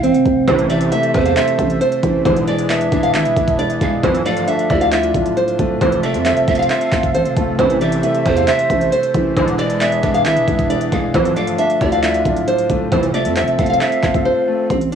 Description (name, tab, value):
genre	hip hop, trap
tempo	135 BPM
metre	4/4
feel	half-time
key	A harmonic minor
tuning	A4 = 440 Hz
part	nylon-string guitar	melody	0.0-14.9 s	C4 to F5	-18 LUFS	equal	cassette tape, analog delay
part	breathy mellow pan flute	second line	0.0-14.7 s	C5 to F5	-24 LUFS	right 6 dB	cassette tape, analog delay
part	growling 808-style bass	bass	0.0-14.9 s	C1 to F2	-22 LUFS	right 2 dB	none
part	trap drum kit	drums	0.0-14.9 s	handclaps, hi-hat, kick drum	-22 LUFS	right 1 dB	cassette tape
part	warm concert grand piano	accompaniment	0.5-14.7 s	C3 to C5	-20 LUFS	left 3 dB	cassette tape
part	accordion	sustained chords	0.5-14.7 s	D3 to E5	-27 LUFS	right 5 dB	light tremolo tuning, cassette tape
part	sync-sweep polysynth	stabs	0.5-13.1 s	A1 to E3	-24 LUFS	right 4 dB	chorus, cassette tape, analog delay
room	light reverb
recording	home recording on cassette, studio reverb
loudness	-14 LUFS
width	side -8 dB against mid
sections	0.5-14.7 A section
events	break 0.0-0.5; silent gap 14.3-14.7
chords	0.5 Am; 2.3 E7; 4.0 Dmadd9; 5.8 Fmaj7; 7.6 Am; 9.4 E7; 11.1 Dmadd9; 12.9 Fmaj7